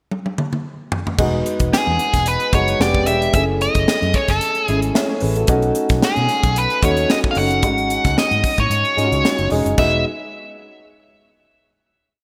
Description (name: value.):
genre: polished 1980s jazz-funk pop.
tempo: 112 BPM.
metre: 4/4.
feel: swing 54% on 16ths.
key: E major.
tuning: A4 = 441 Hz.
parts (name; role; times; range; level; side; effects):
crisp fusion drum kit; drums; 0.1-9.9 s; crash cymbal, hi-hat, kick drum, snare drum, toms; -23 LUFS; equal; gated reverb.
dark grand piano; accompaniment; 1.2-10.0 s; G#3 to E5; -24 LUFS; equal; subtle chorus.
vintage muted fingered electric bass; bass; 1.2-10.0 s; E1 to B2; -24 LUFS; equal; none.
nasal lead guitar with a parked wah; melody; 1.7-10.0 s; G#4 to F#5; -22 LUFS; equal; overdrive.
room: moderate lush hall reverb, RT60 1.9 s, small room ambience.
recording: bright 1980s-style digital production.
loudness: -18 LUFS.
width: mono.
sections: 0.0-1.2 pickup bar; 1.2-9.8 verse; 9.8-11.9 final chord.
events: drum fill 0.1-1.2.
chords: 0.0 N.C.; 1.2 Emaj7; 2.8 Fdim7; 3.3 F#m9; 5.5 B7; 7.6 G#7sus4; 9.8 Emaj7.